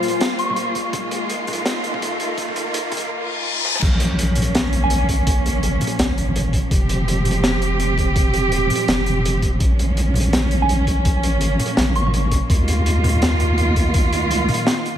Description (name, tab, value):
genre	half-time drum and bass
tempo	166 BPM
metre	4/4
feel	swing 59% on 16ths, half-time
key	Bb dorian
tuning	A4 = 441 Hz
part	warm studio cello section	sustained chords	0.0-15.0 s	Eb3 to C5	-22 LUFS	right 2 dB	vintage 12-bit sampler grit, sidechain pumping
part	crunchy breakbeat drum kit	drums	0.0-15.0 s	crash cymbal, hi-hat, rim click, snare drum, toms	-23 LUFS	equal	none
part	riser, reverse cymbal and impact	sound effects	0.0-5.3 s	none	-26 LUFS	left 1 dB	none
part	pulsing gated texture	texture	0.0-3.1 s	F3 to F4	-32 LUFS	left 11 dB	none
part	soft synth bell	melody	0.4-0.7, 4.8-5.2, 10.6-12.2 s	Ab5 to Db6	-27 LUFS	right 1 dB	chorus, phaser, vintage 12-bit sampler grit, analog delay
part	electronic kick drum	drums	0.8-14.0 s	none	-19 LUFS	equal	none
part	deep soft wobble bass	bass	3.8-14.5 s	Eb1 to Eb2	-20 LUFS	equal	chorus
room	moderate lush hall reverb, RT60 1.6 s, studio reverb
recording	dreamy mix soaked in reverb, high-pass filter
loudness	-16 LUFS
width	side -10 dB against mid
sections	0.0-3.8 A section; 3.8-15.0 B section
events	build-up 0.0-3.8; riser 0.0-3.1; filter sweep 0.0-3.8; reverse cymbal 3.1-3.8; drum fill 3.6; drop 3.8-15.0; impact 3.8-5.3; kick drops out 14.7-15.0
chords	0.0 Bb5; 0.9 Eb5; 3.8 Bbm; 6.7 F5; 9.6 Bbm; 12.5 Eb5